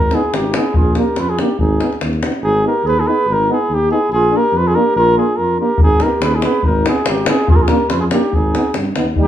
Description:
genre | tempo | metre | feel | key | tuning
balkan folk, Balkan brass band | 142 BPM | 2/4 | straight | Ab hungarian minor | A4 = 444 Hz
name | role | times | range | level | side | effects
mellow flugelhorn | melody | 0.0-9.3 s | G4 to Cb5 | -17 LUFS | equal | none
mellow clarinet | second line | 0.0-9.3 s | Eb4 to Ab4 | -22 LUFS | right 4 dB | none
dark tuba | bass | 0.0-9.3 s | Ab1 to G2 | -20 LUFS | left 1 dB | none
mellow French horn | accompaniment | 0.1-9.2 s | D4 to Eb4 | -24 LUFS | left 6 dB | none
warm trombone | accompaniment | 0.1-9.3 s | G3 to Cb4 | -22 LUFS | right 3 dB | none
davul | percussion | 0.1-2.4, 5.8-9.3 s | none | -16 LUFS | equal | none
room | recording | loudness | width
wet studio reverb, RT60 0.6 s | band playing live in one room | -13 LUFS | side -11 dB against mid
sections
0.0-2.4 A section; 2.4-9.2 A section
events
none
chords
0.0 Abm; 0.7 Bb; 1.6 Abm; 4.1 Bb; 5.8 Abm; 7.5 Bb; 8.3 Abm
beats
0.33 | 0.75 1.17 | 1.59 2.01 | 2.43 2.85 | 3.27 3.69 | 4.12 4.54 | 4.96 5.38 | 5.80 6.22 | 6.64 7.06 | 7.49 7.91 | 8.33 8.75 | 9.18

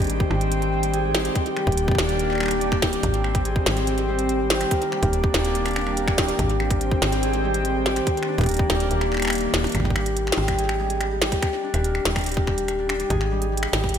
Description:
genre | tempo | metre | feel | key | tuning
IDM | 143 BPM | 4/4 | straight | Ab lydian | A4 = 440 Hz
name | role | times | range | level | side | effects
warbly tape-like pad | sustained chords | 0.0-9.7 s | Eb3 to G5 | -27 LUFS | equal | chorus, built-in reverb
concert harp | arpeggios | 0.0-14.0 s | G3 to Bb4 | -25 LUFS | left 1 dB | ping-pong delay
metallic FM bass | bass | 0.0-14.0 s | Eb1 to Ab1 | -26 LUFS | equal | none
glitchy drum kit | drums | 0.0-14.0 s | finger snaps, hi-hat, percussion blips, snare drum | -26 LUFS | equal | overdrive, digital delay
electronic kick drum | drums | 0.2-13.9 s | none | -24 LUFS | equal | overdrive
room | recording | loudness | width
moderate lush hall reverb, RT60 1.7 s, digital ambience | bright 1980s-style digital production | -20 LUFS | side -8 dB against mid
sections
0.0-9.7 A section; 9.7-14.0 B section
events
kick drops out 8.9-9.7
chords
0.0 Abmaj7; 1.4 Ebmaj7; 3.0 Abmaj7; 4.7 Ebmaj7; 6.4 Abmaj7; 8.1 Ebmaj7; 9.7 Abmaj7; 11.4 Ebmaj7; 13.1 Abmaj7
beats
0.10 0.52 0.94 | 1.35 1.77 2.19 2.61 | 3.03 3.45 3.87 4.29 | 4.71 5.13 5.55 5.97 | 6.39 6.81 7.23 7.65 | 8.07 8.49 8.91 9.33 | 9.75 10.17 10.59 11.01 | 11.43 11.85 12.26 12.68 | 13.10 13.52 13.94

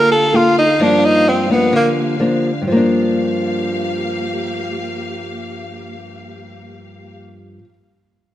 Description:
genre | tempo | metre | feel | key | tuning
bossa nova | 128 BPM | 4/4 | straight | G minor | A4 = 439 Hz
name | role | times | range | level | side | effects
breathy tenor saxophone | melody | 0.0-1.9 s | Bb3 to Bb4 | -13 LUFS | equal | none
nylon-string guitar | accompaniment | 0.0-7.7 s | G2 to A4 | -17 LUFS | left 1 dB | none
warm studio string section | sustained chords | 0.0-7.2 s | Bb3 to F5 | -26 LUFS | left 2 dB | none
room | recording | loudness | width
moderate echo chamber reverb, RT60 1.9 s | none | -14 LUFS | side -13 dB against mid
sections
0.0-2.7 A section; 2.7-6.4 B section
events
tenor saxophone solo 0.0-2.7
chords
0.0 Gm9; 0.8 Gm7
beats
0.33 | 0.80 1.27 1.73 2.20 | 2.67 3.13 3.60 4.07 | 4.54 5.00 5.47 5.94

